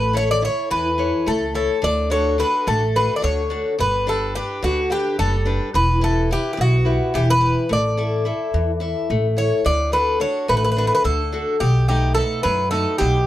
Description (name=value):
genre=greek folk, Greek bouzouki band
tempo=215 BPM (eighths)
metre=7/8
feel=straight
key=D major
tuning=A4 = 440 Hz
part: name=Greek bouzouki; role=melody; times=0.0-13.3 s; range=F#4 to D5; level=-21 LUFS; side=equal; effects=none
part: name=picked old ladder-braced acoustic guitar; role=accompaniment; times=0.0-13.3 s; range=B2 to E5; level=-23 LUFS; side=left 3 dB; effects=none
part: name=upright bass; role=bass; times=0.0-13.3 s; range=E1 to F#2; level=-22 LUFS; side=equal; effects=none
room=light reverb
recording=none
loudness=-17 LUFS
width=side -13 dB against mid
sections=0.0-9.7 A section; 9.7-13.3 B section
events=none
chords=0.0 A; 1.8 D; 3.8 G; 5.7 Em; 7.7 A5; 9.7 D; 11.6 B7